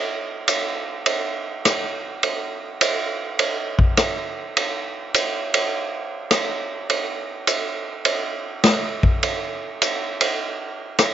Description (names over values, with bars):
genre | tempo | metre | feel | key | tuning
jazz | 103 BPM | 4/4 | swing 67% on 8ths | none | none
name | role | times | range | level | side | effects
swinging big-band drum kit | drums | 0.5-11.1 s | hi-hat, kick drum, ride cymbal, rim click, snare drum | -20 LUFS | right 1 dB | none
room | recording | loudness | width
little or no reverb | recorded outdoors, with no room sound, nothing above 7.6 kHz | -20 LUFS | side -10 dB against mid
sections
0.0-11.1 A section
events
none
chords
none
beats
0.49 1.07 1.65 | 2.24 2.82 3.40 3.98 | 4.57 5.15 5.73 6.32 | 6.90 7.48 8.07 8.65 | 9.23 9.82 10.40 10.99